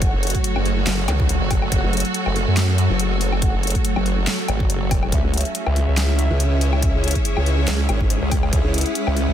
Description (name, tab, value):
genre	heavy wobble dubstep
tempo	141 BPM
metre	4/4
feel	swing 55% on 16ths, half-time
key	F# minor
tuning	A4 = 441 Hz
part	evolving wavetable pad	sustained chords	0.0-9.3 s	F#3 to F#4	-26 LUFS	equal	ensemble chorus, built-in reverb, phaser, sidechain pumping
part	dark brass ensemble	stabs	0.0-9.3 s	A3 to F#5	-32 LUFS	left 1 dB	ping-pong delay
part	formant-sweep wobble bass	bass	0.0-8.8 s	E1 to C#2	-21 LUFS	equal	chorus, overdrive
part	dubstep drum kit	drums	0.0-9.3 s	handclaps, hi-hat, snare drum, woodblock	-26 LUFS	left 3 dB	overdrive, small room ambience
part	electronic kick drum	drums	0.0-8.6 s	none	-21 LUFS	equal	small room ambience
part	warm symphonic string section	texture	0.0-9.3 s	C#4 to F#5	-28 LUFS	right 2 dB	sidechain pumping
part	formant-sweep wobble bass	bass	0.9-9.3 s	F#1 to F#2	-20 LUFS	equal	chorus, overdrive
part	zap	sound effects	1.1-1.2 s	none	-31 LUFS	equal	none
room	little or no reverb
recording	dense, heavily limited modern master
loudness	-17 LUFS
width	side -10 dB against mid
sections	0.0-9.3 A section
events	none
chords	0.0 F#m; 5.1 C#m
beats	| 0.02 0.44 0.87 1.29 | 1.72 2.15 2.57 3.00 | 3.42 3.85 4.27 4.70 | 5.12 5.55 5.97 6.40 | 6.83 7.25 7.68 8.10 | 8.53 8.95